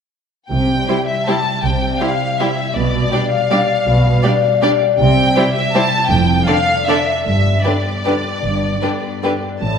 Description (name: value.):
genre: classical, orchestral ballroom waltz.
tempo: 158 BPM.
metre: 3/4.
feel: uneven beats, rubato.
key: C major.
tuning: A4 = 440 Hz.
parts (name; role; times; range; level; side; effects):
rich chamber violin section; melody; 0.5-9.8 s; D5 to A5; -19 LUFS; left 1 dB; none.
concert harp; arpeggios; 0.5-9.8 s; F2 to E5; -20 LUFS; left 6 dB; none.
dark symphonic cello section; bass; 0.5-9.8 s; F2 to C3; -20 LUFS; right 2 dB; none.
rich studio double bass section; bass; 0.5-9.8 s; F1 to C2; -21 LUFS; right 4 dB; none.
rich chamber violin section; second line; 0.9-9.3 s; G4 to D5; -23 LUFS; left 1 dB; none.
rich chamber viola section; accompaniment; 0.9-9.3 s; D3 to E4; -22 LUFS; right 2 dB; none.
room: wet scoring stage reverb, RT60 1.5 s.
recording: lossy compression artefacts.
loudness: -13 LUFS.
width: side -7 dB against mid.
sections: 0.5-9.8 A section.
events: none.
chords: 0.5 C; 2.8 G7/B; 5.0 C; 6.1 Dm/F; 7.3 G.